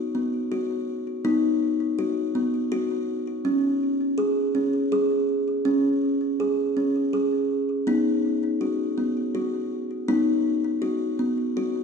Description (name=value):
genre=world meditative, meditative tuned percussion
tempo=81 BPM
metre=3/4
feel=straight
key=B major pentatonic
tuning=A4 = 440 Hz
part: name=kalimba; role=solo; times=0.0-11.8 s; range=B3 to G#4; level=-22 LUFS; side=equal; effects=ping-pong delay
room=wet echo chamber reverb, RT60 1.8 s, studio ambience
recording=dark, warm production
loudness=-22 LUFS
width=side -6 dB against mid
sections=0.0-11.8 A section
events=none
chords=0.0 B; 3.5 C#5; 7.9 B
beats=0.52 | 1.25 1.98 2.72 | 3.45 4.18 4.92 | 5.66 6.39 7.13 | 7.87 8.61 9.35 | 10.09 10.83 11.57